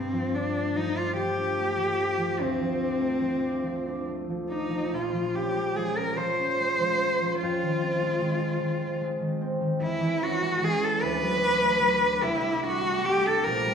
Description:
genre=classical, impressionist duo for cello and harp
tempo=49 BPM (dotted quarters)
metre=6/8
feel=rubato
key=unclear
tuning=A4 = 440 Hz
part: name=rich cello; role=melody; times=0.0-13.7 s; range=C4 to C5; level=-26 LUFS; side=left 1 dB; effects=none
part: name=concert harp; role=accompaniment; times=0.0-13.7 s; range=Bb1 to D4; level=-29 LUFS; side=equal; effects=none
room=wet recital hall reverb, RT60 1.5 s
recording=recorded in a church or concert hall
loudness=-24 LUFS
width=side -7 dB against mid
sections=0.0-13.7 A section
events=none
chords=0.0 Gsus2; 2.4 Dm7; 4.9 Bbm9; 7.4 Fm7; 9.8 E6; 11.0 D6; 12.2 Csus2

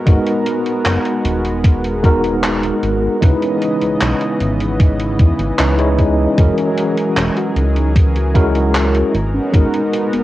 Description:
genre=vaporwave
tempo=76 BPM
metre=4/4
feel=straight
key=unclear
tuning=A4 = 439 Hz
part: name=lush unison pad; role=sustained chords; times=0.0-10.2 s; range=C#3 to D#5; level=-23 LUFS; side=equal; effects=chorus, cassette tape
part: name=tine electric piano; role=accompaniment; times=0.1-10.2 s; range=E3 to C#5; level=-17 LUFS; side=equal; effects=medium stereo tremolo, wide subtle chorus, cassette tape, analog delay
part: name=chorused synth bass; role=bass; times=0.1-10.2 s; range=D#1 to E2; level=-18 LUFS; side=equal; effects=none
part: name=electronic kick drum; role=drums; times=0.1-9.7 s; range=none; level=-11 LUFS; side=equal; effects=studio reverb
part: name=gated 80s digital drum machine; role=drums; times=0.1-10.2 s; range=handclaps, hi-hat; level=-22 LUFS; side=equal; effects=gated reverb, studio reverb
part: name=warm velvety synth lead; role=melody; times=7.4-10.2 s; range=B3 to F#4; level=-24 LUFS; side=equal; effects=chorus, cassette tape, tape echo
room=light reverb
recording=home recording on cassette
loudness=-13 LUFS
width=side -15 dB against mid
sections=0.0-10.2 A section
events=none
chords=0.0 Bmaj13; 3.2 C#m9; 6.4 F#9; 9.1 Bmaj13

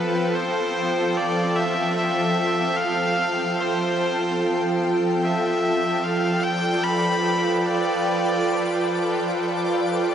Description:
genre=ambient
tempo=free time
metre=none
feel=none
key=unclear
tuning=A4 = 440 Hz
part: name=bright electric violin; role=melody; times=0.0-10.1 s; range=B4 to B5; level=-25 LUFS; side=left 1 dB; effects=tape echo
part: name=shimmering ambient pad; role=sustained chords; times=0.0-10.1 s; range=F3 to G5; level=-23 LUFS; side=right 1 dB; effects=chorus, built-in reverb
part: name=analog drone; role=drone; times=0.0-10.1 s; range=F3 to F4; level=-28 LUFS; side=equal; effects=chorus
part: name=twinkling granular texture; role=texture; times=0.0-10.1 s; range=C4 to C7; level=-35 LUFS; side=left 2 dB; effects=built-in reverb
room=wet shimmer reverb, RT60 8.4 s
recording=nothing above 10.7 kHz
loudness=-20 LUFS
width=side -8 dB against mid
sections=0.0-10.1 A section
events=fade-in on synth texture 0.0-10.1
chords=0.0 Dm/F (rootless); 5.2 Gadd9/F

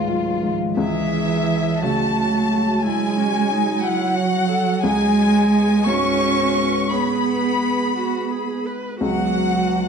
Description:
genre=neoclassical piano and strings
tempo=58 BPM (dotted quarters)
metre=6/8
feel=uneven beats, rubato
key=unclear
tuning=A4 = 440 Hz
part: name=rich chamber violin section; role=melody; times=0.0-9.9 s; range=E#4 to C#6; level=-23 LUFS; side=left 3 dB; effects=none
part: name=dark cello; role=second line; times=0.0-9.9 s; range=E3 to C#4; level=-21 LUFS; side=right 4 dB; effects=slapback echo
part: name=warm upright piano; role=accompaniment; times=0.0-9.9 s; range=C#2 to C#5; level=-25 LUFS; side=left 5 dB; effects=none
part: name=warbly tape-like pad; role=sustained chords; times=0.0-9.9 s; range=D#3 to C#5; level=-31 LUFS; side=right 1 dB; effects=chorus, built-in reverb
part: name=rich viola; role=accompaniment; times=0.8-9.9 s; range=C#4 to B4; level=-28 LUFS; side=right 5 dB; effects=none
room=wet scoring stage reverb, RT60 1.6 s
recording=dark, warm production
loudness=-17 LUFS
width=side -6 dB against mid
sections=0.8-9.9 A section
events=none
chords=0.0 C#7; 0.8 F#m7/C#; 4.8 G#m/C#; 9.0 Bsus2/C#

